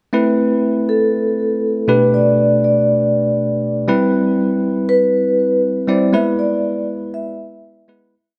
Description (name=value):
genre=pop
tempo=120 BPM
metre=4/4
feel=straight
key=A minor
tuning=A4 = 439 Hz
part: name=bell-like tine electric piano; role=accompaniment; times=0.1-8.2 s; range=B2 to D5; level=-19 LUFS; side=equal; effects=none
part: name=vibraphone with soft mallets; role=melody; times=0.9-7.8 s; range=A4 to E5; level=-19 LUFS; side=equal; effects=none
room=moderate lush hall reverb, RT60 3.2 s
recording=none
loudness=-16 LUFS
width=mono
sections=0.1-8.1 verse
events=fade-out 6.1-8.1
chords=0.1 Amadd9; 1.9 Gadd9/B; 3.9 Cmaj7; 6.1 E